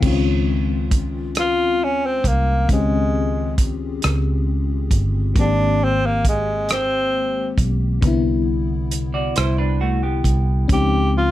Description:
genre	slow six-eight R&B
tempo	45 BPM (dotted quarters)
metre	6/8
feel	straight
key	unclear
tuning	A4 = 440 Hz
part	FM electric piano with soft pad layer	accompaniment	0.0-11.3 s	C3 to Ab4	-24 LUFS	left 6 dB	chorus, tremolo
part	vintage muted fingered electric bass	bass	0.0-11.3 s	G1 to Db2	-21 LUFS	right 1 dB	none
part	warm soul drum kit	drums	0.0-10.9 s	crash cymbal, hi-hat, kick drum, rim click	-20 LUFS	right 1 dB	none
part	breathy tenor saxophone	melody	1.4-11.3 s	Ab3 to G4	-20 LUFS	equal	slapback echo
part	semi-hollow electric guitar	second line	9.1-10.7 s	A3 to D5	-24 LUFS	right 4 dB	spring reverb
room	little or no reverb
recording	none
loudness	-17 LUFS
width	side -14 dB against mid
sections	0.0-11.3 A section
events	tenor saxophone solo 0.0-11.3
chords	0.0 Dbmaj9; 5.4 Abmaj9; 8.0 Cmaj9; 10.7 Dbmaj9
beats	| 0.03 1.36 | 2.69 4.03 | 5.36 6.69 | 8.03 9.36 | 10.69

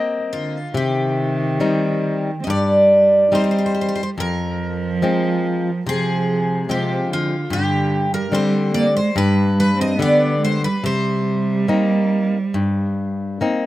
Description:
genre	fado-style ballad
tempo	71 BPM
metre	4/4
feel	rubato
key	C minor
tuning	A4 = 443 Hz
part	flamenco guitar	accompaniment	0.0-13.7 s	F2 to Eb5	-20 LUFS	left 3 dB	none
part	picked twelve-string acoustic guitar	melody	0.3-13.4 s	F4 to Eb5	-20 LUFS	equal	slapback echo
part	dark cello	second line	0.3-13.4 s	C3 to C4	-22 LUFS	right 3 dB	none
room	little or no reverb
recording	recorded outdoors, with no room sound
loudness	-16 LUFS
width	side -15 dB against mid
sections	0.7-13.7 A section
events	none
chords	0.0 Cm7; 0.7 Cm; 4.2 Fm; 7.5 Gsus4; 9.2 G; 10.8 Cm7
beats	| 0.74 1.61 2.47 3.33 | 4.18 5.03 5.87 6.70 | 7.51 8.33 9.16 10.00 | 10.84 11.68 12.54 13.41

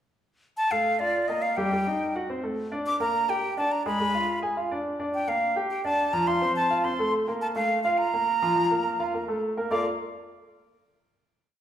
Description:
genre	jazz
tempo	210 BPM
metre	4/4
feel	straight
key	Bb major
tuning	A4 = 437 Hz
part	breathy silver concert flute	melody	0.6-9.8 s	D5 to D6	-25 LUFS	equal	none
part	warm baby grand piano	accompaniment	0.7-9.8 s	F3 to Ab5	-27 LUFS	equal	none
room	wet recital hall reverb, RT60 1.4 s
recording	recorded in a church or concert hall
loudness	-24 LUFS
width	side -10 dB against mid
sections	0.6-9.7 A section; 9.7-10.9 final chord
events	none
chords	0.6 Bbmaj7; 1.7 Eb/G; 2.3 D5; 2.9 Gm; 4.0 Abdim7; 5.1 Gm9; 6.3 F; 7.4 Bb5; 9.7 Bbmaj7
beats	| 0.57 0.85 1.14 1.43 | 1.71 2.00 2.29 2.57 | 2.86 3.14 3.43 3.71 | 4.00 4.28 4.57 4.85 | 5.14 5.42 5.71 5.99 | 6.28 6.56 6.85 7.13 | 7.42 7.71 7.99 8.28 | 8.56 8.85 9.14 9.42 | 9.71

